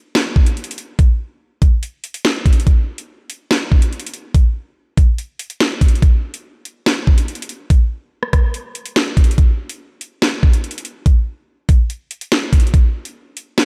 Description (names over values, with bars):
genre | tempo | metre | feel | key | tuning
hip hop | 143 BPM | 4/4 | half-time | none | none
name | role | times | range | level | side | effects
drill drum kit | drums | 0.1-13.7 s | hi-hat, kick drum, rim click, snare drum | -15 LUFS | equal | none
room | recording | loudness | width
light reverb | dark, warm production | -16 LUFS | mono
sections
0.0-2.7 A section; 2.7-13.7 B section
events
none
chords
none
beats
0.15 0.57 | 0.99 1.41 1.83 2.25 | 2.67 3.09 3.51 3.93 | 4.34 4.76 5.18 5.60 | 6.02 6.44 6.86 7.28 | 7.70 8.12 8.54 8.96 | 9.38 9.80 10.22 10.64 | 11.06 11.48 11.90 12.32 | 12.74 13.16 13.58